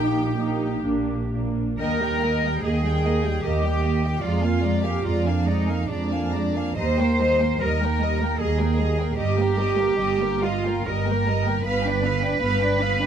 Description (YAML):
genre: classical, slow romantic movement for string orchestra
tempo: 73 BPM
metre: 3/4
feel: uneven beats, rubato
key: Eb major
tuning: A4 = 440 Hz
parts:
  - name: warm symphonic violin section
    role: melody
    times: 0.0-13.1 s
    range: Eb5 to B5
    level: -37 LUFS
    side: left 4 dB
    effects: none
  - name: warm symphonic violin section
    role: second line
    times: 0.0-13.1 s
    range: G4 to G5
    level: -32 LUFS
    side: left 3 dB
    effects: none
  - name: dark symphonic viola section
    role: accompaniment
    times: 0.0-13.1 s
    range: G3 to Eb4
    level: -28 LUFS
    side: equal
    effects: none
  - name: dark symphonic double bass section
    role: bass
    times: 0.0-13.1 s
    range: G1 to F2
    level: -24 LUFS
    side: right 2 dB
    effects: none
  - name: warm symphonic cello section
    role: bass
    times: 0.0-13.1 s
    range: D4 to C5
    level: -25 LUFS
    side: right 1 dB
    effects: none
room: light reverb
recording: dark, warm production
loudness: -20 LUFS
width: side -8 dB against mid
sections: 0.0-1.8 A section; 1.8-13.1 B section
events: none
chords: 0.0 Eb/Bb; 0.8 Bb; 1.8 Eb; 4.2 Bb7/F; 6.8 Eb; 9.2 Eb/G; 11.6 G7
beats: 0.84 | 1.79 2.63 3.43 | 4.22 5.04 5.88 | 6.77 7.61 8.40 | 9.18 9.98 10.87 | 11.64 12.40